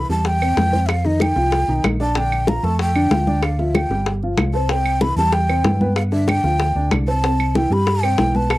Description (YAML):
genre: Afro-Cuban jazz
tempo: 189 BPM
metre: 4/4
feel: straight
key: C major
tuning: A4 = 440 Hz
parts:
  - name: breathy mellow jazz flute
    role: melody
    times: 0.0-8.6 s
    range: Eb5 to B5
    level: -21 LUFS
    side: equal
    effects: none
  - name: warm upright piano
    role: accompaniment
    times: 0.0-8.6 s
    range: C3 to D5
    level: -23 LUFS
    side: equal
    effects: none
  - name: hollow-body short-scale fingered electric bass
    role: bass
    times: 0.0-8.6 s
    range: G1 to G2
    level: -20 LUFS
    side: equal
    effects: none
  - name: congas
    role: percussion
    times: 0.1-8.6 s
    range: none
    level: -24 LUFS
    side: left 1 dB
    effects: none
  - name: bongos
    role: percussion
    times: 0.2-8.6 s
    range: none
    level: -24 LUFS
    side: left 4 dB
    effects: none
  - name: claves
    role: percussion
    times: 0.4-8.6 s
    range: none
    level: -28 LUFS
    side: right 6 dB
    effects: none
room: light reverb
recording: dry, close 1970s-style studio recording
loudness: -16 LUFS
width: side -17 dB against mid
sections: 0.0-8.6 A section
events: none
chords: 0.0 C; 0.9 Fsus2; 2.2 Bbmaj7; 3.4 Dm; 4.1 G9sus4; 4.7 Cmaj7; 6.0 G7; 7.2 Cmaj7